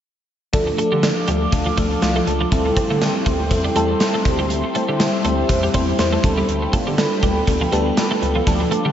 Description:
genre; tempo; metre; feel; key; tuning
1980s-style pop; 121 BPM; 4/4; swing 55% on 16ths; D dorian; A4 = 442 Hz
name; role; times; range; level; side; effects
FM electric piano with soft pad layer; accompaniment; 0.5-8.9 s; F3 to D5; -20 LUFS; left 1 dB; chorus, phaser
chorused pulse-width pad; sustained chords; 0.5-8.9 s; G4 to D6; -26 LUFS; right 1 dB; none
smooth synth bass; bass; 0.5-8.9 s; C2 to D3; -24 LUFS; equal; none
gated 80s drum kit; drums; 0.5-8.8 s; hi-hat, kick drum, snare drum; -22 LUFS; equal; none
twelve-string electric guitar; riff; 0.7-8.9 s; F3 to C4; -26 LUFS; right 2 dB; ensemble chorus, diffuse ambient delay
room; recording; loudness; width
wet huge ambient reverb, RT60 8.0 s; dreamy mix soaked in reverb, nothing above 7.7 kHz; -16 LUFS; side -10 dB against mid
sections
0.5-8.9 A section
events
none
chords
0.5 Dm; 2.5 Am7/D; 6.2 Gadd9/D

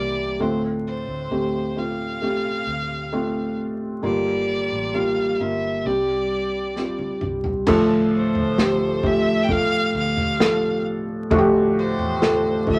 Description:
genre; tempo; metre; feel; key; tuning
pop ballad; 66 BPM; 4/4; straight; D minor; A4 = 439 Hz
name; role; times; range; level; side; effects
rich violin; melody; 0.0-12.8 s; C5 to G5; -30 LUFS; equal; none
felt-muted upright piano; accompaniment; 0.0-12.8 s; G2 to A4; -23 LUFS; equal; none
vintage muted fingered electric bass; bass; 0.0-12.8 s; G1 to E2; -36 LUFS; equal; none
unplugged drum kit; drums; 6.8-12.8 s; crash cymbal, kick drum, snare drum, toms; -27 LUFS; equal; none
room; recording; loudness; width
wet small room reverb, RT60 0.5 s; vinyl crackle; -22 LUFS; mono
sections
0.0-7.7 A section; 7.7-12.8 B section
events
drum fill 6.8-7.7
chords
0.4 Dm7; 4.0 Gm7; 5.9 Csus2; 7.7 Dm

